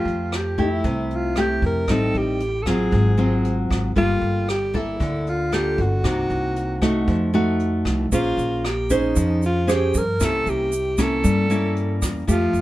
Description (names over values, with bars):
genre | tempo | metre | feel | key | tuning
bossa nova | 115 BPM | 4/4 | straight | unclear | A4 = 439 Hz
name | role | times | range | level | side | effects
breathy alto saxophone | melody | 0.0-12.6 s | Eb4 to Bb4 | -24 LUFS | equal | none
nylon-string guitar | accompaniment | 0.0-12.6 s | Ab2 to C5 | -22 LUFS | equal | none
upright bass | bass | 0.0-12.6 s | G1 to G2 | -26 LUFS | equal | none
jazz brush drum kit | drums | 0.1-12.6 s | hi-hat, kick drum, rim click | -28 LUFS | right 1 dB | none
tube shaker | percussion | 8.1-12.6 s | none | -35 LUFS | right 6 dB | none
room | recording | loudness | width
light reverb | dark, warm production | -19 LUFS | side -16 dB against mid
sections
0.0-12.6 A section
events
none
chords
0.0 Fmaj9; 1.9 Am7b5; 2.9 Ab6; 4.0 Gm9; 6.0 Cm7b5; 7.1 F7b9; 8.1 Bbm9; 10.2 C7b9